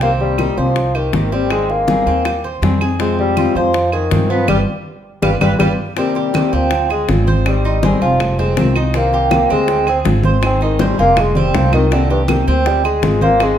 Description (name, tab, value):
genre	latin, Cuban son and guajira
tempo	161 BPM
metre	4/4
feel	straight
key	C minor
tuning	A4 = 440 Hz
part	mellow bassoon	melody	0.0-13.6 s	G2 to C4	-18 LUFS	left 2 dB	none
part	nylon-string guitar	accompaniment	0.0-13.6 s	C3 to Ab4	-20 LUFS	left 3 dB	none
part	Cuban tres	arpeggios	0.0-13.6 s	B3 to C5	-22 LUFS	right 7 dB	none
part	upright bass	bass	0.0-13.6 s	F1 to G2	-18 LUFS	right 1 dB	none
part	bongos	percussion	0.0-13.6 s	none	-26 LUFS	left 6 dB	none
part	congas	percussion	0.0-13.6 s	none	-22 LUFS	equal	none
part	claves	percussion	0.4-13.6 s	none	-27 LUFS	right 5 dB	none
room	wet large studio reverb, RT60 1.3 s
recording	none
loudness	-13 LUFS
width	side -10 dB against mid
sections	0.0-6.0 A section; 6.0-13.6 B section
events	band accent 4.5-6.0; bassoon solo 6.0-13.6; drum fill 11.4-11.9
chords	0.0 Cm7; 1.5 Abmaj7; 3.0 Fm; 4.5 G7; 6.0 Cm7; 6.7 Dm7b5; 7.5 Abmaj7; 8.2 Fm7; 8.9 Cm7; 9.7 Dm7b5; 10.4 Abmaj7; 11.2 Fm7; 11.9 Cm7; 12.7 Dm7b5